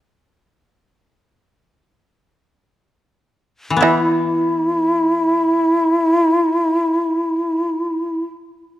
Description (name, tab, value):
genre	japanese traditional, Japanese chamber music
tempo	free time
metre	none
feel	none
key	unclear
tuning	A4 = 440 Hz
part	koto	accompaniment	3.7-8.3 s	E3 to E4	-20 LUFS	left 2 dB	none
part	breathy shakuhachi	melody	3.8-8.2 s	E4	-16 LUFS	equal	none
part	shamisen	second line	3.8-8.2 s	E3	-20 LUFS	right 5 dB	none
room	light reverb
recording	dark, warm production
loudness	-15 LUFS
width	side -14 dB against mid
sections	0.0-3.8 A section; 3.8-8.8 B section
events	slowing down 0.0-3.8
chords	none